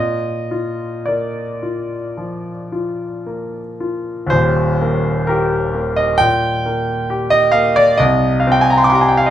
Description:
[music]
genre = classical, romantic nocturne for solo piano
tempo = 52-67 BPM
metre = 4/4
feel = rubato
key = Eb major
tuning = A4 = 436 Hz
[part]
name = warm grand piano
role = solo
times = 0.0-9.3 s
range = Eb1 to D6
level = -14 LUFS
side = equal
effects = none
[sound]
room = moderate large studio reverb, RT60 1.2 s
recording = minimal, uncompressed stereo recording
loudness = -14 LUFS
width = side -11 dB against mid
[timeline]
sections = 0.0-4.3 A section; 4.3-9.3 B section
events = none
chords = 0.0 Bb; 4.3 Eb; 8.0 C5

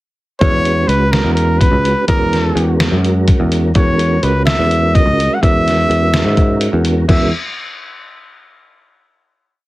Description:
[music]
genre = progressive instrumental, band music in an uneven meter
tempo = 252 BPM (eighths)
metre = 7/8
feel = straight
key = E lydian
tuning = A4 = 440 Hz
[part]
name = clear trumpet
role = melody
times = 0.4-7.3 s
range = A#4 to F#5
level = -16 LUFS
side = equal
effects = none
[part]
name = mellow tonewheel organ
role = accompaniment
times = 0.4-7.3 s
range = G#3 to B4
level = -20 LUFS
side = right 2 dB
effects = chorus vibrato, fast rotary speaker
[part]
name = picked electric bass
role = bass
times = 0.4-7.3 s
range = C#2 to G#2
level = -15 LUFS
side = equal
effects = none
[part]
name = trip hop sampler-style drum kit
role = drums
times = 0.4-7.2 s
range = crash cymbal, hi-hat, kick drum, snare drum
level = -16 LUFS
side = equal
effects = none
[sound]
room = light reverb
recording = heavily compressed radio sound, multiband compression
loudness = -11 LUFS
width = side -18 dB against mid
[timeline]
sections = 0.4-7.1 A section; 7.1-8.8 final chord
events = none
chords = 0.4 Eadd9; 2.1 F#9/E; 3.8 Eadd9; 5.4 E

